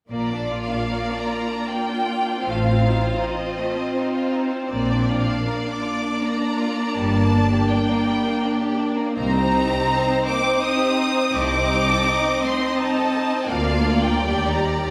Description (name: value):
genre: classical, slow romantic movement for string orchestra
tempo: 75-85 BPM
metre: 3/4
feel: rubato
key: Bb major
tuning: A4 = 440 Hz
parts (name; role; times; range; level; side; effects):
- rich studio violin section; melody; 0.1-14.9 s; D5 to Eb6; -28 LUFS; equal; none
- rich studio violin section; second line; 0.1-14.9 s; G3 to Eb5; -28 LUFS; equal; none
- rich studio viola section; accompaniment; 0.1-14.9 s; G3 to G4; -26 LUFS; equal; none
- rich studio cello section; bass; 0.1-14.9 s; C2 to Bb2; -29 LUFS; equal; none
- warm studio double bass section; bass; 0.1-14.9 s; G1 to Eb2; -29 LUFS; equal; none
room: wet recital hall reverb, RT60 1.5 s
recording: recorded in a church or concert hall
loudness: -21 LUFS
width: mono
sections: 0.1-14.9 A section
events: none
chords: 0.1 Bb; 2.5 F7/A; 4.7 Bb; 7.0 Gm; 9.2 Cm7; 13.5 Bb/D; 14.3 Ebmaj7